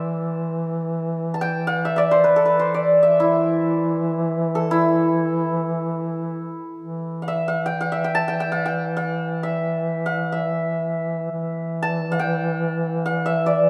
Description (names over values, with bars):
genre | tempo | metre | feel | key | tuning
Persian modal ensemble | free time | none | none | E dastgah shur | A4 = 440 Hz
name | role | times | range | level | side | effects
santur | melody | 0.0-13.7 s | E4 to A5 | -23 LUFS | equal | none
mellow duduk | drone | 0.0-13.7 s | E3 | -27 LUFS | equal | none
room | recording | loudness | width
moderate recital hall reverb, RT60 1.5 s | none | -22 LUFS | mono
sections
0.0-6.8 A section; 6.8-13.7 A section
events
none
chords
none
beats
free time